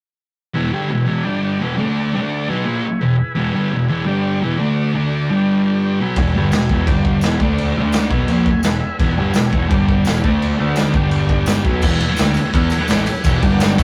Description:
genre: garage rock duo or trio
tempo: 170 BPM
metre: 4/4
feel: straight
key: unclear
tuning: A4 = 439 Hz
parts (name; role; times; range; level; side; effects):
- combo organ; sustained chords; 0.5-13.8 s; D4 to B5; -30 LUFS; equal; none
- thick fuzz guitar; riff; 0.5-13.8 s; E2 to E4; -20 LUFS; equal; distortion
- growling picked electric bass; bass; 6.2-13.8 s; E1 to E2; -24 LUFS; equal; overdrive, tube saturation
- raw garage drum kit; drums; 6.2-13.8 s; crash cymbal, kick drum, ride cymbal, snare drum; -20 LUFS; equal; none
- tambourine; percussion; 6.5-13.8 s; none; -38 LUFS; equal; none
room: moderate small room reverb, RT60 0.5 s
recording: rough rehearsal-room recording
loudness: -17 LUFS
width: mono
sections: 0.6-11.8 A section; 11.8-13.8 B section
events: transistor combo organ fill 8.3-9.0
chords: 0.6 E; 1.3 G5; 1.6 E; 1.8 D5; 2.5 E; 4.1 G5; 4.4 E; 4.6 D5; 5.3 G5; 6.0 E; 6.9 G5; 7.2 E; 7.4 D5; 8.1 E; 9.7 G5; 10.1 E; 10.2 D5; 10.9 G5; 11.7 E; 13.4 G5

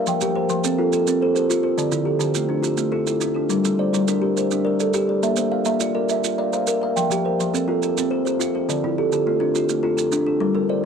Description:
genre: southern african traditional, mbira-style interlocking cycle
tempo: 139 BPM (dotted quarters)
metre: 12/8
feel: straight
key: unclear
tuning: A4 = 441 Hz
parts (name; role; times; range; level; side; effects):
- kalimba; arpeggios; 0.0-10.9 s; D3 to F5; -21 LUFS; left 6 dB; analog delay, plate reverb
- kalimba; arpeggios; 0.0-10.9 s; D3 to G5; -22 LUFS; right 10 dB; plate reverb
- maracas; percussion; 0.1-10.3 s; none; -29 LUFS; right 11 dB; none
room: wet studio reverb, RT60 0.6 s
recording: home recording on cassette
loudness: -19 LUFS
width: side -7 dB against mid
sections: 0.0-10.4 A section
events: none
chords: 0.1 F; 1.8 Dm; 3.5 Gm; 5.2 Bb; 7.0 F; 8.7 Dm

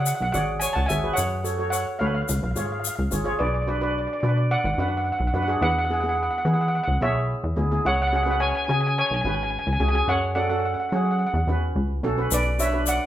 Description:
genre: calypso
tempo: 108 BPM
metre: 4/4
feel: straight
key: F# minor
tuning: A4 = 440 Hz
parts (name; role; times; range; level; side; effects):
- steel pan; melody; 0.0-13.1 s; B4 to A5; -25 LUFS; right 1 dB; none
- steel pan; accompaniment; 0.0-13.0 s; B3 to C#5; -28 LUFS; right 1 dB; none
- plucky analog bass; bass; 0.0-13.0 s; G#1 to F#3; -25 LUFS; equal; none
- tube shaker; percussion; 0.1-3.2, 12.3-13.0 s; none; -30 LUFS; left 6 dB; none
room: moderate studio reverb, RT60 0.8 s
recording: band playing live in one room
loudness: -21 LUFS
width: side -12 dB against mid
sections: 0.0-3.4 A section; 3.4-13.1 A section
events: none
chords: 0.0 C#sus4; 1.2 F#m; 2.3 C#; 3.4 Bm; 5.6 E; 7.8 C#sus4; 10.1 F#madd9; 12.3 Bm

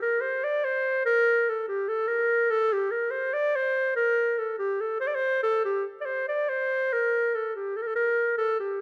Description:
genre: balkan folk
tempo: free time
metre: none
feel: none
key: unclear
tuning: A4 = 443 Hz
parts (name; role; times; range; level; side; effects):
- warm clarinet; solo; 0.0-8.8 s; G4 to D5; -26 LUFS; equal; none
room: moderate recital hall reverb, RT60 1.7 s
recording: none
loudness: -26 LUFS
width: mono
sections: 0.0-8.8 A section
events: none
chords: none

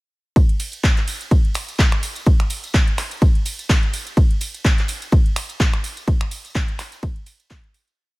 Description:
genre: house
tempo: 126 BPM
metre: 4/4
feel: swing 56% on 16ths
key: none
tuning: none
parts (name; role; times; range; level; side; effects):
- electronic kick drum; drums; 0.4-7.6 s; none; -16 LUFS; equal; none
- house drum kit; drums; 0.4-8.0 s; finger snaps, handclaps, hi-hat, ride cymbal; -26 LUFS; equal; sidechain pumping on cymbals, sidechain pumping on hats
- tambourine; percussion; 0.4-8.0 s; none; -35 LUFS; right 1 dB; sidechain pumping on perc
room: digital ambience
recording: none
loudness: -17 LUFS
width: side -23 dB against mid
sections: 0.4-8.0 drop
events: drop 0.4-8.0; fade-out 5.4-8.0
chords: none

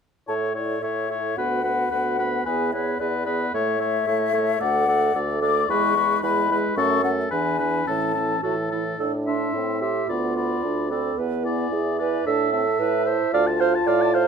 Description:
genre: quick classical-period movement for wind quintet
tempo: 111 BPM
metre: 2/4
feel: straight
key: A major, A minor from 9.0 s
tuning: A4 = 440 Hz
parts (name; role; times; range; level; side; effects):
- mellow hollow concert flute; melody; 0.3-14.3 s; C#5 to D6; -26 LUFS; left 8 dB; none
- clear oboe; second line; 0.3-14.3 s; A4 to A5; -27 LUFS; left 3 dB; none
- dark clarinet; accompaniment; 0.3-14.3 s; C#4 to D5; -26 LUFS; right 8 dB; none
- warm French horn; accompaniment; 0.3-14.3 s; E3 to F4; -29 LUFS; left 1 dB; none
- mellow bassoon; bass; 0.3-14.3 s; D2 to A2; -28 LUFS; right 3 dB; none
room: moderate large studio reverb, RT60 1.0 s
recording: minimal, uncompressed stereo recording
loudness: -20 LUFS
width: side -6 dB against mid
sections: 0.3-9.0 A section; 9.0-14.3 B section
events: none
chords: 0.3 A; 1.4 Bm/D; 2.5 E7; 3.5 A; 4.6 D; 5.7 E; 6.8 F#m; 7.3 E7; 7.9 A; 9.0 Am; 10.1 Bdim/D; 11.2 E7; 12.3 A5; 13.3 Dm

